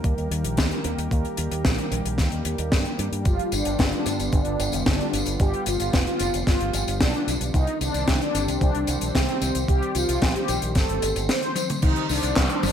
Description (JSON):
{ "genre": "italo disco", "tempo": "112 BPM", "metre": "4/4", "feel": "straight", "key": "unclear", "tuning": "A4 = 441 Hz", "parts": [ { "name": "warm analog pad", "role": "sustained chords", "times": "0.0-12.7 s", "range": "D3 to C5", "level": "-30 LUFS", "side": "right 1 dB", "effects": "chorus" }, { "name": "fingered electric bass with an envelope filter", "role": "bass", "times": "0.0-12.7 s", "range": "F1 to G2", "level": "-28 LUFS", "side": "equal", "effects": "none" }, { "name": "electronic kick drum", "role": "drums", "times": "0.0-12.5 s", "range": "none", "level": "-22 LUFS", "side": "equal", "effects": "none" }, { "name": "tight funk drum kit", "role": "drums", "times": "0.0-12.7 s", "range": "crash cymbal, handclaps, hi-hat, snare drum, tambourine, toms", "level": "-26 LUFS", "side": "left 1 dB", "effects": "gated reverb" }, { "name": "mellow synth brass", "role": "melody", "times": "3.3-12.7 s", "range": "C4 to C5", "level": "-27 LUFS", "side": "left 1 dB", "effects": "chorus, digital delay" } ], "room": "moderate plate reverb, RT60 1.5 s, small room ambience", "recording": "bright 1980s-style digital production", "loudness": "-21 LUFS", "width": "side -9 dB against mid", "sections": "0.0-11.8 A section", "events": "drum fill 11.6", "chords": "0.0 Eb; 3.3 G7; 7.5 Cm" }